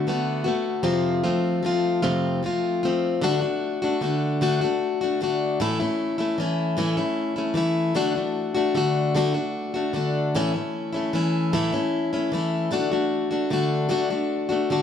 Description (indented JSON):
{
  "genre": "rock",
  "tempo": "50 BPM (dotted quarters)",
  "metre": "6/8",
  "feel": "straight",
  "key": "unclear",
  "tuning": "A4 = 440 Hz",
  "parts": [
    { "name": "picked plugged-in steel-string acoustic guitar", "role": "solo", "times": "0.0-14.8 s", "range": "F2 to F#4", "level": "-22 LUFS", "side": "left 2 dB", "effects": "none" }
  ],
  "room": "light reverb",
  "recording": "small room ambience",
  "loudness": "-22 LUFS",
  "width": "side -8 dB against mid",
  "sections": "0.0-3.2 A section; 3.2-14.8 B section",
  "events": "none",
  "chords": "0.0 D6; 0.8 F; 3.2 D; 5.6 A; 8.0 D; 10.3 A; 12.7 D"
}